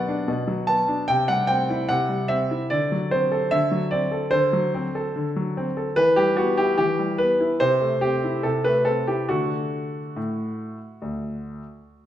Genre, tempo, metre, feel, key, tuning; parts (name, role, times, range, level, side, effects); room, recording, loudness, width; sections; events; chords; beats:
classical-period piano sonatina; 73 BPM; 4/4; straight; A4 = 440 Hz
clear grand piano; solo; 0.0-12.1 s; D2 to A5; -20 LUFS; equal
wet recital hall reverb, RT60 1.5 s; -20 LUFS; side -11 dB against mid
0.0-12.1 A section
0.0 Bm; 1.1 C; 2.7 D7; 6.0 Em; 7.6 Am/C; 9.3 D
0.28 1.09 1.90 | 2.71 3.53 4.33 5.15 | 5.97 6.79 7.61 8.44 | 9.30 10.17 11.02 11.86